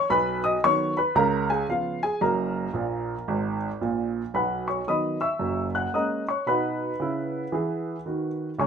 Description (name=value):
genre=jazz, stride piano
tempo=113 BPM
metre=4/4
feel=swing 64% on 8ths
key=B major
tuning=A4 = 440 Hz
part: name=warm upright piano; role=solo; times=0.0-8.7 s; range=F#1 to F#6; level=-23 LUFS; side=right 1 dB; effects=none
room=moderate studio reverb, RT60 0.5 s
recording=none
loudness=-24 LUFS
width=side -6 dB against mid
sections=0.0-4.3 A section; 4.3-8.7 B section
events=upright piano fill 2.7-4.3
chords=0.1 B; 1.2 C#7; 2.2 F#; 4.3 B; 5.4 F#9; 6.5 B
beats=| 0.10 0.63 1.16 1.69 | 2.22 2.75 3.28 3.81 | 4.34 4.87 5.40 5.93 | 6.46 6.99 7.52 8.05 | 8.59